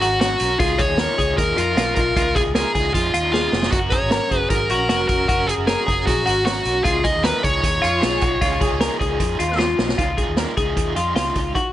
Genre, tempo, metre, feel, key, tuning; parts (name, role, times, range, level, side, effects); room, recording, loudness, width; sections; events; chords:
jangly indie pop; 154 BPM; 4/4; straight; A4 = 439 Hz
dark smooth lead guitar; melody; 0.0-9.6 s; E#4 to D#5; -21 LUFS; equal; overdrive
raw garage guitar; accompaniment; 0.0-11.6 s; C#3 to A#4; -28 LUFS; right 6 dB; overdrive, tremolo
twelve-string electric guitar; arpeggios; 0.0-11.7 s; E#4 to A#4; -22 LUFS; left 3 dB
vintage muted fingered electric bass; bass; 0.0-11.5 s; E#1 to E#2; -27 LUFS; equal
vintage drum kit; drums; 0.0-11.6 s; hi-hat, kick drum, snare drum; -23 LUFS; right 1 dB
warm studio violin section; second line; 7.8-9.2 s; E#4 to G#4; -29 LUFS; equal; digital delay
light reverb, small room ambience; nothing above 10.7 kHz; -17 LUFS; side -13 dB against mid
0.0-10.0 A section; 10.0-11.6 B section
drum fill 3.3-3.7, 9.6-10.0
0.0 F#; 0.6 C#add9; 3.7 F#; 6.9 C#add9